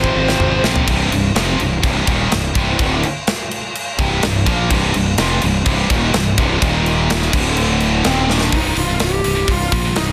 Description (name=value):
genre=heavy metal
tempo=126 BPM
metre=4/4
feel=straight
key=C minor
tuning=A4 = 441 Hz
part: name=bluesy overdriven lead guitar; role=melody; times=0.0-0.6, 8.1-10.1 s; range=C4 to C5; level=-23 LUFS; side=equal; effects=distortion, delay
part: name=heavy high-gain guitar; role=riff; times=0.0-10.1 s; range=C2 to Bb3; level=-23 LUFS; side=equal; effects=distortion
part: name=tight distorted guitar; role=riff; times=0.0-8.5 s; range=C2 to F4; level=-23 LUFS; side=equal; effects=distortion
part: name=fuzz fingered electric bass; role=bass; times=0.0-10.1 s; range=C1 to Bb1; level=-22 LUFS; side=equal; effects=overdrive
part: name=tight metal drum kit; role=drums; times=0.0-10.1 s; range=crash cymbal, hi-hat, kick drum, snare drum, toms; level=-22 LUFS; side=equal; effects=none
room=little or no reverb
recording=dense, heavily limited modern master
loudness=-16 LUFS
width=mono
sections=0.9-8.5 A section; 8.5-10.1 B section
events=drum fill 0.0-0.9, 8.3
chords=0.0 Fm/Ab; 0.9 Cm; 6.6 Eb5; 7.3 D5; 8.1 Eb5; 8.5 C5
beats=0.40 | 0.88 1.36 1.84 2.32 | 2.80 3.27 3.75 4.23 | 4.71 5.19 5.66 6.14 | 6.62 7.10 7.57 8.05 | 8.53 9.01 9.49 9.96